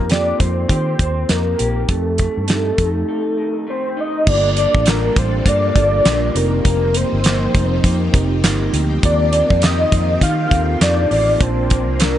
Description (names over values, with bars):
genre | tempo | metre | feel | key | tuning
indie pop, bedroom pop | 101 BPM | 4/4 | swing 60% on 16ths | unclear | A4 = 441 Hz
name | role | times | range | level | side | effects
soft octave-layered synth lead | melody | 0.0-12.2 s | A4 to F5 | -19 LUFS | left 1 dB | ensemble chorus, tape echo
electric guitar through a small old amp | accompaniment | 0.0-12.2 s | F2 to G4 | -27 LUFS | left 2 dB | lush chorus, warbly pitch drift
mellow reed electric piano | accompaniment | 0.0-12.2 s | A3 to A5 | -27 LUFS | right 5 dB | cassette tape
vintage muted fingered electric bass | bass | 0.0-12.2 s | F1 to Eb3 | -19 LUFS | equal | none
damped 70s drum kit | drums | 0.1-12.2 s | crash cymbal, hi-hat, kick drum, snare drum | -17 LUFS | equal | none
string machine, full ensemble | sustained chords | 4.3-12.2 s | Eb3 to A4 | -24 LUFS | equal | phaser, ensemble chorus
group handclap | percussion | 4.9-12.2 s | none | -28 LUFS | right 3 dB | none
room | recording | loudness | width
studio ambience | nothing above 10.6 kHz | -14 LUFS | side -11 dB against mid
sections
0.0-4.3 A section; 4.3-12.2 B section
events
break 3.1-4.3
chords
0.0 Eb69; 1.9 F7; 4.3 Gm7; 6.4 F7sus4; 9.0 Eb69; 11.4 Bbmaj7